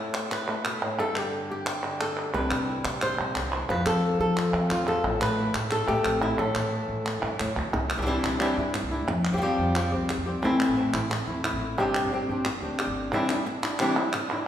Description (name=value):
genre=flamenco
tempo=178 BPM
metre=4/4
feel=straight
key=unclear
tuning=A4 = 440 Hz
part: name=flamenco guitar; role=melody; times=0.0-14.5 s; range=G2 to C5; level=-26 LUFS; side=left 1 dB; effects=none
part: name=palmas hand claps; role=percussion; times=0.1-14.5 s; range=none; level=-30 LUFS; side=right 1 dB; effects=none
part: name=upright bass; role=bass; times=2.3-13.1 s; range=G1 to F3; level=-31 LUFS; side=equal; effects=none
room=wet recital hall reverb, RT60 1.7 s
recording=recorded in a church or concert hall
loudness=-24 LUFS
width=side -10 dB against mid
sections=0.0-7.7 A section; 7.7-13.1 B section; 13.1-14.5 B section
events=none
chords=0.0 A5; 1.0 G5; 2.3 Cadd9; 3.7 F; 5.0 Am; 6.4 Asus2; 7.7 Cadd9; 9.1 Fsus2; 10.4 Am; 11.8 Gsus4; 13.1 Cadd9